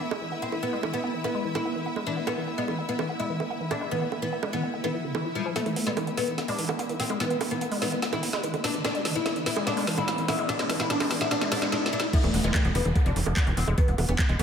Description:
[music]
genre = psychedelic trance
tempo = 146 BPM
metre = 4/4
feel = straight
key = unclear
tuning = A4 = 437 Hz
[part]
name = woody wave-folded pluck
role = riff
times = 0.0-14.4 s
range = D3 to B3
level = -31 LUFS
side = equal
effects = chorus, auto-pan, vintage 12-bit sampler grit, sidechain pumping, analog delay
[part]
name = clear symphonic string section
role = texture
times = 0.0-11.7 s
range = E4 to E6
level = -37 LUFS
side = left 2 dB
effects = sidechain pumping
[part]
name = garage drum kit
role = drums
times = 0.1-14.4 s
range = bongos, crash cymbal, handclaps, hi-hat, snare drum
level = -31 LUFS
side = right 2 dB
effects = overdrive, small room reverb
[part]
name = oud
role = melody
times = 0.4-14.4 s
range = F3 to E4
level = -30 LUFS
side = left 1 dB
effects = phaser, sidechain pumping, analog delay
[part]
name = swell, riser and downlifter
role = sound effects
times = 4.9-14.4 s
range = none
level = -36 LUFS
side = equal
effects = none
[part]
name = electronic kick drum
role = drums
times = 12.1-14.3 s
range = none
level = -24 LUFS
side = equal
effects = overdrive, small room reverb
[part]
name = tight sequencer bass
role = bass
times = 12.2-14.4 s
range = E1 to E2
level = -26 LUFS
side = equal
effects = none
[sound]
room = wet plate reverb, RT60 1.9 s, digital ambience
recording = dreamy mix soaked in reverb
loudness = -25 LUFS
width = side -7 dB against mid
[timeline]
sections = 0.0-5.6 A section; 5.6-12.1 B section; 12.1-14.4 C section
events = swell 4.9-5.6, 11.3-12.1; build-up 5.6-12.1; drum fill 5.6-11.7, 11.7-12.1; filter sweep on synth arpeggio sound 5.6-12.1; drop 12.1-14.4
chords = 0.0 E5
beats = 0.22 | 0.63 1.04 1.45 1.86 | 2.27 2.68 3.09 3.50 | 3.91 4.33 4.74 5.15 | 5.56 5.97 6.38 6.79 | 7.20 7.61 8.02 8.44 | 8.85 9.26 9.67 10.08 | 10.49 10.90 11.31 11.72 | 12.13 12.54 12.96 13.37 | 13.78 14.19

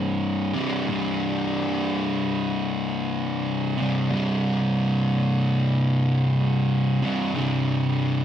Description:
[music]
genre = metal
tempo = 74 BPM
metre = 4/4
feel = swing 60% on 8ths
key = unclear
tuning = A4 = 440 Hz
[part]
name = fuzz guitar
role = solo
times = 0.0-8.2 s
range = C2 to C3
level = -21 LUFS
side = equal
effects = distortion
[sound]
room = moderate stone room reverb, RT60 1.1 s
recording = rough rehearsal-room recording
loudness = -21 LUFS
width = side -10 dB against mid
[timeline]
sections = 0.0-8.2 A section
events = none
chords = 0.0 C5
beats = 0.06 | 0.87 1.68 2.50 3.31 | 4.12 4.93 5.74 6.55 | 7.36 8.18

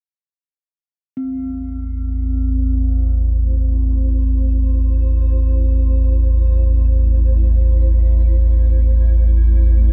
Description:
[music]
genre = dark ambient drone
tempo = free time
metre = none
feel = none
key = A minor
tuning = A4 = 440 Hz
[part]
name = granular cloud pad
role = sustained chords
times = 2.2-9.9 s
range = A3 to C5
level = -37 LUFS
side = equal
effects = built-in reverb
[part]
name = deep rumbling drone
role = drone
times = 1.5-9.9 s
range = A1 to E2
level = -16 LUFS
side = equal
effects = built-in reverb, lush chorus
[part]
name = bronze singing bowl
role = texture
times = 1.2-9.9 s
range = C4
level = -32 LUFS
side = equal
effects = none
[sound]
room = light reverb, small room ambience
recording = dark, warm production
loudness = -16 LUFS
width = mono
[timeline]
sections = 1.2-9.9 A section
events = fade-in on ambient pad 1.2-9.9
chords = 1.2 Am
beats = free time

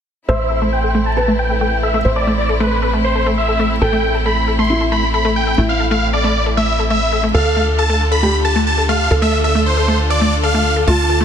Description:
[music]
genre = trance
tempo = 136 BPM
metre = 4/4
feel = straight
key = A minor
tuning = A4 = 440 Hz
[part]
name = big supersaw lead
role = melody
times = 0.3-11.2 s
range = B4 to C6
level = -18 LUFS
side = equal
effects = low-pass filter, tape echo
[part]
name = felt-muted upright piano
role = second line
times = 0.3-11.2 s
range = E4 to C5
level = -22 LUFS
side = equal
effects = tape echo
[part]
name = clear symphonic string section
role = sustained chords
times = 0.3-11.2 s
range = D3 to A4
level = -24 LUFS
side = equal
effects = none
[part]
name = analog pluck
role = arpeggios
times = 0.3-11.2 s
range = A3 to A4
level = -20 LUFS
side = left 1 dB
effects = chorus, tape echo
[part]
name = tight sequencer bass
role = bass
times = 0.3-11.2 s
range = A1 to D2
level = -18 LUFS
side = equal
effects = none
[part]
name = riser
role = sound effects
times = 11.1-11.2 s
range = none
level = -36 LUFS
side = left 3 dB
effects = none
[sound]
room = moderate lush hall reverb, RT60 2.0 s, studio ambience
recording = dense, heavily limited modern master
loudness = -13 LUFS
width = side -8 dB against mid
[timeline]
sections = 0.3-11.2 A section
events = filter sweep on supersaw synth 0.3-11.2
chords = 0.3 Am; 7.3 Dm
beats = | 0.29 0.73 1.17 1.61 | 2.05 2.49 2.93 3.38 | 3.82 4.26 4.70 5.14 | 5.58 6.02 6.46 6.90 | 7.34 7.79 8.23 8.67 | 9.11 9.55 9.99 10.43 | 10.88

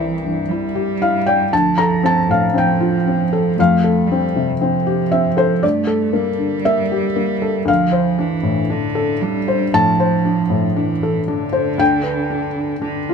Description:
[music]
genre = neoclassical piano and strings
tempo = 58 BPM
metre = 4/4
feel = rubato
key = D minor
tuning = A4 = 440 Hz
[part]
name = clear cello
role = second line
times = 0.0-13.1 s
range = D3 to A3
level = -20 LUFS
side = right 8 dB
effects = none
[part]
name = felt-muted upright piano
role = accompaniment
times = 0.0-13.1 s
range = C2 to Bb5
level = -16 LUFS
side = left 4 dB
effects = none
[sound]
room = light reverb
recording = close, detailed microphones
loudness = -15 LUFS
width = side -6 dB against mid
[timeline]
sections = 0.0-13.1 A section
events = none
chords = 0.0 Cadd9; 1.5 Dm7; 3.6 Fadd9; 5.6 Gmadd9; 7.7 Dm7; 11.8 G/D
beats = 0.49 1.52 2.54 | 3.58 4.60 5.63 6.66 | 7.68 8.71 9.74 10.77 | 11.80 12.83

